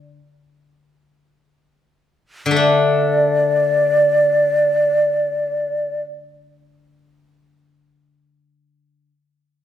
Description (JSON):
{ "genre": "chinese traditional, Chinese chamber ensemble", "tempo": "free time", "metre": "none", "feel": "none", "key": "unclear", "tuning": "A4 = 440 Hz", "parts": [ { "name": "steel-string zither", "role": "accompaniment", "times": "0.0-9.1 s", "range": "D3 to D4", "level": "-20 LUFS", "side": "left 2 dB", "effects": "none" }, { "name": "mellow hollow xiao", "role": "melody", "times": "2.6-6.0 s", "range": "D5", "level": "-16 LUFS", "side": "equal", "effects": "none" } ], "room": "moderate recital hall reverb, RT60 1.3 s", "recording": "none", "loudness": "-15 LUFS", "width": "side -10 dB against mid", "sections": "0.0-2.6 A section; 2.6-8.5 B section", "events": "slowing down 0.0-2.6", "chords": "none", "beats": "free time" }